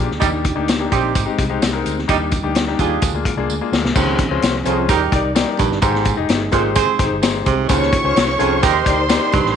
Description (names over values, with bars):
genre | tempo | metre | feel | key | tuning
uptempo 1960s-style soul | 128 BPM | 4/4 | straight | Eb major | A4 = 440 Hz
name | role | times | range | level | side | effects
clear concert grand piano | accompaniment | 0.0-9.4 s | Ab3 to Eb5 | -22 LUFS | left 8 dB | none
mellow tonewheel organ | sustained chords | 0.0-9.6 s | F3 to D5 | -27 LUFS | right 2 dB | fast rotary speaker, chorus vibrato
vintage muted fingered electric bass | bass | 0.0-9.5 s | F1 to Eb2 | -24 LUFS | equal | none
vintage drum kit | drums | 0.1-9.5 s | crash cymbal, hi-hat, kick drum, snare drum | -19 LUFS | left 2 dB | none
clear horn section | second line | 0.2-9.0 s | G3 to C5 | -21 LUFS | right 12 dB | none
tambourine | percussion | 0.2-9.4 s | none | -31 LUFS | right 12 dB | none
warm baritone saxophone | riff | 4.0-9.5 s | Eb2 to C3 | -22 LUFS | right 10 dB | none
warm studio violin section | second line | 7.7-9.5 s | C5 to Db6 | -19 LUFS | right 2 dB | none
room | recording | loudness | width
light reverb, studio reverb | 1960s-style stereo with parts hard left and right, vinyl crackle, nothing above 11.0 kHz | -15 LUFS | side -8 dB against mid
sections
0.0-4.0 A section; 4.0-9.6 B section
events
drum fill 3.5-4.0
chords
0.2 Ebmaj7; 1.2 Abmaj7; 2.1 Ebmaj7; 3.0 Bb7; 4.0 Dbmaj7; 4.9 Ebmaj7; 5.8 Abmaj7; 7.7 Dbmaj7; 8.6 Ebmaj7